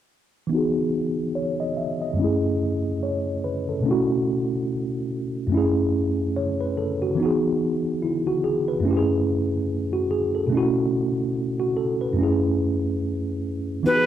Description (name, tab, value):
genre	hip hop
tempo	72 BPM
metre	4/4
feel	swing 59% on 16ths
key	F# dorian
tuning	A4 = 441 Hz
part	mellow tine electric piano	accompaniment	0.5-14.1 s	F#2 to E5	-21 LUFS	equal	fast stereo tremolo, cassette tape, low-pass filter
part	breathy bright jazz flute	melody	13.9-14.1 s	B4	-17 LUFS	equal	none
room	wet studio reverb, RT60 0.6 s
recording	none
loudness	-21 LUFS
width	side -10 dB against mid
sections	0.5-13.8 A section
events	filter sweep on tine electric piano 0.5-13.8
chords	0.5 Emaj9; 2.2 F#m7; 3.8 B7sus4; 5.5 F#m7; 7.2 Emaj9; 8.8 F#m7; 10.5 B7sus4; 12.2 F#m7